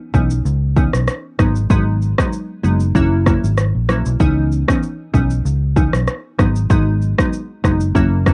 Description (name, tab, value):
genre	afrobeats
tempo	96 BPM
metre	4/4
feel	swing 55% on 16ths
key	C# dorian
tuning	A4 = 441 Hz
part	glassy wavetable pluck	accompaniment	0.1-8.3 s	E3 to E4	-22 LUFS	equal	chorus, cassette tape, plate reverb
part	vintage muted fingered electric bass	bass	0.1-8.3 s	F#1 to C#2	-19 LUFS	equal	none
part	deep house drum kit	drums	0.1-8.3 s	kick drum, rim click, shaker	-19 LUFS	equal	cassette tape
room	little or no reverb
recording	home recording on cassette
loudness	-17 LUFS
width	mono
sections	0.0-8.3 A section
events	none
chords	0.0 C#m9; 1.4 G#m7; 3.0 F#7; 4.2 C#m9; 6.4 G#m7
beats	0.45 1.08 | 1.70 2.33 2.95 3.58 | 4.20 4.83 5.45 6.08 | 6.70 7.33 7.95